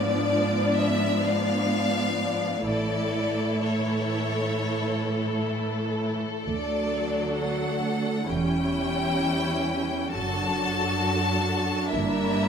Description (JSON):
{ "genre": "classical, slow romantic movement for string orchestra", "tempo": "62-68 BPM", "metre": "4/4", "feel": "rubato", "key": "D major", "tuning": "A4 = 440 Hz", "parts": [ { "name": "bright studio violin section", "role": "melody", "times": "0.0-12.5 s", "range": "C#5 to A5", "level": "-30 LUFS", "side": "left 3 dB", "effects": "none" }, { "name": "warm studio violin section", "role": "second line", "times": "0.0-12.5 s", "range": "C#4 to D5", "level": "-30 LUFS", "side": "left 2 dB", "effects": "none" }, { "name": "warm studio viola section", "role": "accompaniment", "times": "0.0-12.5 s", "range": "E3 to D4", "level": "-29 LUFS", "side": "right 2 dB", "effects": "none" }, { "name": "warm studio cello section", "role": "bass", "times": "0.0-12.5 s", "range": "D2 to A2", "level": "-29 LUFS", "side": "right 1 dB", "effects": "none" }, { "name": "warm studio double bass section", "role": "bass", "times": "2.7-12.5 s", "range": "E1 to D2", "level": "-32 LUFS", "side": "right 2 dB", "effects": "none" } ], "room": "wet recital hall reverb, RT60 1.6 s", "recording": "none", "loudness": "-23 LUFS", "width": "side -7 dB against mid", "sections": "0.0-12.5 A section", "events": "none", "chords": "0.0 G#dim7; 2.7 A; 6.5 D; 8.3 C#dim/E; 10.1 D/F#; 11.9 Em7b5/G", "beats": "0.78 1.71 | 2.66 3.62 4.56 5.50 | 6.45 7.38 8.30 9.22 | 10.14 11.04 11.92" }